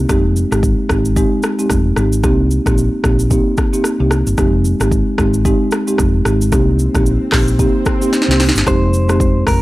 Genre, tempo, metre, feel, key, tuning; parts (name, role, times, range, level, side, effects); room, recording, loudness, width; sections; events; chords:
afrobeats; 112 BPM; 4/4; swing 58% on 16ths; F minor; A4 = 442 Hz
marimba with soft mallets; accompaniment; 0.0-9.3 s; Ab3 to G4; -16 LUFS; equal
hollow-body short-scale fingered electric bass; bass; 0.0-9.6 s; F1 to C2; -16 LUFS; equal
afro-pop drum kit; drums; 0.1-9.6 s; handclaps, hi-hat, kick drum, rim click, shaker, snare drum; -17 LUFS; equal; overdrive
swell; sound effects; 6.9-8.7 s; -24 LUFS; right 1 dB
direct-recorded clean electric guitar; melody; 8.7-9.6 s; Bb4 to C5; -20 LUFS; equal; analog delay
little or no reverb; dry, gritty hardware recording; -12 LUFS; side -18 dB against mid
0.1-8.7 A section
swell 6.9-8.7; drum fill 8.1-8.7
0.1 Fm7; 2.2 Cm7; 4.4 Fm7; 6.5 Cm7; 8.7 Fm7